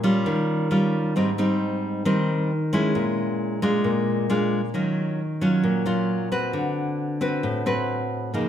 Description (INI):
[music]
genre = bossa nova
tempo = 134 BPM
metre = 4/4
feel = straight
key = unclear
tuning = A4 = 440 Hz
[part]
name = nylon-string guitar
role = solo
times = 0.0-8.5 s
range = G#2 to Cb5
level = -21 LUFS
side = equal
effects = none
[sound]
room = wet recital hall reverb, RT60 1.4 s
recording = recorded in a church or concert hall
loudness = -21 LUFS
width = side -10 dB against mid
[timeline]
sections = 0.0-4.8 A section; 4.8-8.5 B section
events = none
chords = 0.3 D#9; 1.2 G#maj7; 3.0 A#m7b5; 3.9 A#7; 4.8 Ebm9; 6.5 D6